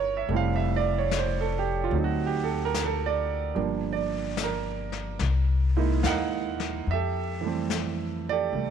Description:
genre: jazz ballad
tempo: 73 BPM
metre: 4/4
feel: swing 67% on 8ths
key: F major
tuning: A4 = 443 Hz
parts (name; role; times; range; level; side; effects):
- warm concert grand piano; accompaniment; 0.0-8.7 s; E3 to Gb5; -27 LUFS; right 9 dB; none
- upright bass; bass; 0.0-8.7 s; F1 to F2; -29 LUFS; left 2 dB; none
- jazz brush drum kit; drums; 0.3-8.7 s; brushed snare drum, hi-hat, snare drum; -35 LUFS; left 11 dB; none
room: light reverb, small room ambience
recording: 1960s-style stereo with parts hard left and right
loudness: -25 LUFS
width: side -8 dB against mid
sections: 0.0-6.9 A section; 6.9-8.7 B section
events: none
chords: 0.3 Fmaj9; 1.9 D7b9; 3.6 Gm7; 5.2 C7alt; 6.9 Fmaj9

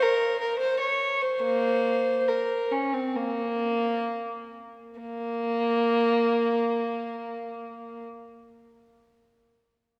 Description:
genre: classical, baroque-style suite movement for unaccompanied violin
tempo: 62-80 BPM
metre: 4/4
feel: rubato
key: Bb minor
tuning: A4 = 439 Hz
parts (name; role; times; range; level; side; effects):
- rich violin; solo; 0.0-8.0 s; Bb3 to Db5; -27 LUFS; equal; none
room: wet church reverb, RT60 3.0 s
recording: recorded in a church or concert hall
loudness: -26 LUFS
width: mono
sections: 0.0-5.0 A section; 5.0-8.7 B section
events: slowing down 0.0-5.0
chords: none

